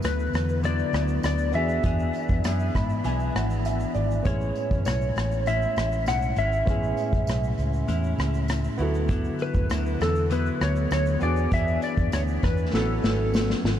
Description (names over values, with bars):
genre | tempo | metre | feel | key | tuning
indie pop, bedroom pop | 99 BPM | 4/4 | straight | A major | A4 = 440 Hz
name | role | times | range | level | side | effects
clean lap steel guitar | melody | 0.0-13.6 s | A4 to F#5 | -29 LUFS | left 1 dB | analog chorus, tape echo
clean electric guitar | accompaniment | 0.0-13.8 s | A2 to G#4 | -30 LUFS | left 3 dB | wide subtle chorus, vibrato effect
warm upright piano | accompaniment | 0.0-13.8 s | B3 to B5 | -34 LUFS | right 4 dB | cassette tape
vintage muted fingered electric bass | bass | 0.0-13.8 s | G#1 to G#2 | -26 LUFS | equal | none
unplugged drum kit | drums | 0.0-13.8 s | hi-hat, kick drum, rim click, shaker, snare drum | -29 LUFS | equal | none
tambourine | percussion | 0.0-13.5 s | none | -51 LUFS | right 9 dB | none
room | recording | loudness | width
moderate huge ambient reverb, RT60 5.6 s | dreamy mix soaked in reverb, cassette tape | -22 LUFS | side -10 dB against mid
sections
0.0-13.8 A section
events
upright piano fill 2.4-4.3; drum fill 12.7-13.8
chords
0.0 D69; 1.5 E7; 4.3 Amaj7; 8.8 D69; 11.2 E7; 12.7 A69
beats
0.04 0.64 1.24 | 1.84 2.45 3.05 3.65 | 4.26 4.86 5.46 6.07 | 6.67 7.28 7.88 8.49 | 9.09 9.70 10.30 10.91 | 11.52 12.12 12.73 13.34